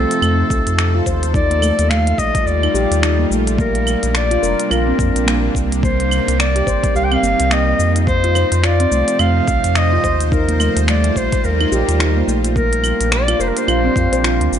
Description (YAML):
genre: organic downtempo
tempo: 107 BPM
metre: 4/4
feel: swing 59% on 16ths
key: unclear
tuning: A4 = 440 Hz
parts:
  - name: warm clarinet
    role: melody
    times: 0.0-14.5 s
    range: A4 to G5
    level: -20 LUFS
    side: left 1 dB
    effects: ping-pong delay
  - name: bowed-like drone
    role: sustained chords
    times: 0.0-14.6 s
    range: C3 to C5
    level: -22 LUFS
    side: equal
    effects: built-in reverb, sidechain pumping
  - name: handpan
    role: arpeggios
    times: 0.0-14.4 s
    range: A3 to C5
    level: -21 LUFS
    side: equal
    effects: digital delay
  - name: warm sub bass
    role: bass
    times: 0.0-14.6 s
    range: F1 to F2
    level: -18 LUFS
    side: equal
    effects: tube saturation, sidechain pumping
  - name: organic electronic drum kit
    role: drums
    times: 0.1-14.6 s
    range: claves, finger snaps, hi-hat, shaker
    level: -22 LUFS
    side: equal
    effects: overdrive
  - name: electronic kick drum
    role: drums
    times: 0.5-14.1 s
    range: none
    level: -20 LUFS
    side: equal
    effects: overdrive
room: light reverb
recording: nothing above 10.7 kHz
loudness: -13 LUFS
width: side -9 dB against mid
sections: 0.0-14.6 A section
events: kick drops out 14.2-14.6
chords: 0.0 F7; 1.3 Ebmaj9#11; 3.6 Bb69; 5.8 Cm7; 8.1 F7; 10.3 Ebadd9; 12.6 Bb69